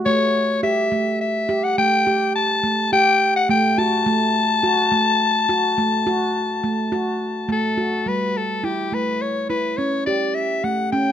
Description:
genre	contemporary instrumental, contemporary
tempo	105 BPM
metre	7/4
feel	straight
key	A mixolydian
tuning	A4 = 438 Hz
part	raspy soprano saxophone	melody	0.1-11.1 s	G4 to A5	-19 LUFS	left 3 dB	none
part	handpan	arpeggios	0.1-11.1 s	G3 to G4	-22 LUFS	right 3 dB	none
room	moderate recital hall reverb, RT60 1.6 s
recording	close, detailed microphones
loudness	-17 LUFS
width	side -10 dB against mid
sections	0.0-8.1 A section; 8.1-11.1 B section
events	none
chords	0.0 Gsus2/A; 4.1 F#m/A; 8.1 A7

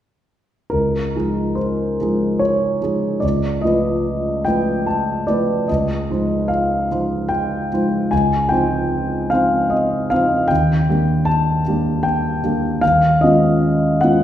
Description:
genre	classical, impressionist solo piano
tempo	69-79 BPM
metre	3/4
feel	rubato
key	Db lydian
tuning	A4 = 441 Hz
part	warm concert grand piano	solo	0.7-14.2 s	Db2 to A5	-16 LUFS	equal	none
room	wet recital hall reverb, RT60 1.4 s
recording	heard from further back in the room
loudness	-16 LUFS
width	side -11 dB against mid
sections	0.7-14.2 A section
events	none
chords	0.7 Dbmaj9; 3.2 F7#11/Db; 5.7 Dbmaj9; 10.5 D#maj7; 12.8 C#9/D#

